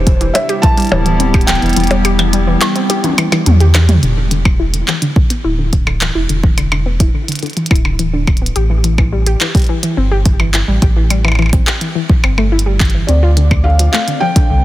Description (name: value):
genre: IDM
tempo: 106 BPM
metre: 4/4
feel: straight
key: E phrygian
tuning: A4 = 440 Hz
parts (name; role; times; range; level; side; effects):
- felt-muted upright piano; melody; 0.0-3.4, 13.1-14.6 s; C5 to A5; -20 LUFS; equal; vintage 12-bit sampler grit, dub echo
- warbly tape-like pad; sustained chords; 0.0-4.0 s; C3 to A4; -20 LUFS; equal; chorus, built-in reverb
- warm sub bass; bass; 0.0-14.6 s; D1 to E2; -13 LUFS; equal; none
- warbly dusty pluck; arpeggios; 0.1-14.6 s; D3 to G4; -19 LUFS; left 2 dB; chorus, dub echo
- electronic kick drum; drums; 0.1-14.5 s; none; -12 LUFS; equal; none
- glitchy drum kit; drums; 0.1-14.5 s; handclaps, hi-hat, percussion blips, snare drum, toms; -18 LUFS; equal; none
- bubbling stepped-filter texture; texture; 13.3-14.6 s; C4 to D5; -28 LUFS; left 2 dB; chorus, built-in reverb, sidechain pumping
room: light reverb, digital ambience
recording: dense, heavily limited modern master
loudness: -10 LUFS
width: side -15 dB against mid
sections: 0.0-4.0 A section; 4.0-14.6 B section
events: kick drops out 1.8-4.0; drum fill 2.9-4.0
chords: 0.0 Cmaj7; 4.0 E5; 8.6 A7(no3); 13.1 Dm7